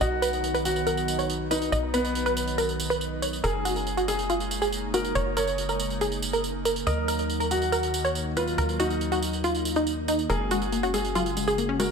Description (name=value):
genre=uplifting trance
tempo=140 BPM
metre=4/4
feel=straight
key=F# major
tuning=A4 = 440 Hz
part: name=wide unison pluck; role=melody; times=0.0-11.9 s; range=D#4 to D#5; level=-28 LUFS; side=right 1 dB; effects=tape echo
part: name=warm grand piano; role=second line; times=0.0-11.9 s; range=B3 to C#5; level=-30 LUFS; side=left 1 dB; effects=tape echo
part: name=analog string pad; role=sustained chords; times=0.0-11.9 s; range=C#3 to F#4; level=-33 LUFS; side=equal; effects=ensemble chorus
part: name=tight sequencer bass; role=bass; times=0.0-11.9 s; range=F#1 to D#2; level=-32 LUFS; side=equal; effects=none
part: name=tambourine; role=drums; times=0.0-11.9 s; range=none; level=-34 LUFS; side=right 5 dB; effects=none
part: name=wide unison pluck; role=arpeggios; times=10.3-11.9 s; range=F#3 to C#4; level=-30 LUFS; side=left 5 dB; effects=tape echo
room=moderate recital hall reverb, RT60 1.4 s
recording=none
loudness=-24 LUFS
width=side -5 dB against mid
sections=0.0-11.9 A section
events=none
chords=0.0 B; 3.4 F#add9; 6.9 D#m; 10.3 F#add9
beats=| 0.01 0.44 0.87 1.30 | 1.73 2.15 2.58 3.01 | 3.44 3.87 4.30 4.72 | 5.15 5.58 6.01 6.44 | 6.87 7.30 7.72 8.15 | 8.58 9.01 9.44 9.87 | 10.30 10.72 11.15 11.58